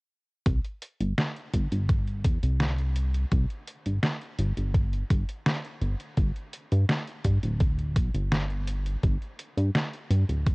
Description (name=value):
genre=vaporwave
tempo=84 BPM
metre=4/4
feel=straight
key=C major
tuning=A4 = 440 Hz
part: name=chorused synth bass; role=bass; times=0.5-10.5 s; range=D1 to G2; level=-26 LUFS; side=equal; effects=none
part: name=detuned 8-bit digital drum machine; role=drums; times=0.5-10.5 s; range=hi-hat, snare drum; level=-29 LUFS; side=equal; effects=none
part: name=electronic kick drum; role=drums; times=0.5-10.5 s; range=none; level=-25 LUFS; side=equal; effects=none
room=digital ambience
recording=worn, warbling old tape, cassette tape, warbly pitch drift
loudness=-25 LUFS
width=side -31 dB against mid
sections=0.5-10.5 A section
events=none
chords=none